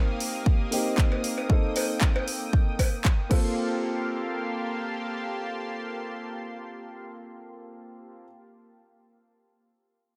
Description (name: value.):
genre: nu-disco, nu disco.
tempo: 116 BPM.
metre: 4/4.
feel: straight.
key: G minor.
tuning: A4 = 440 Hz.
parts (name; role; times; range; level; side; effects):
warm grand piano; accompaniment; 0.0-8.3 s; Bb3 to A4; -35 LUFS; equal; sidechain pumping, low-pass filter, tape echo.
lush unison pad; sustained chords; 0.0-8.2 s; Bb3 to Eb6; -37 LUFS; equal; chorus, sidechain pumping.
house drum kit; drums; 0.2-3.4 s; crash cymbal, handclaps, hi-hat; -35 LUFS; equal; overdrive.
electronic kick drum; drums; 0.5-3.4 s; none; -25 LUFS; equal; overdrive.
cowbell; percussion; 1.1-3.4 s; none; -36 LUFS; equal; none.
room: light reverb, digital ambience.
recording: none.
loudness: -27 LUFS.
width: mono.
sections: 0.0-3.6 A section; 3.6-7.7 B section.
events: filter sweep on grand piano 0.0-3.6.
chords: 0.0 F7sus4; 3.3 Gm11.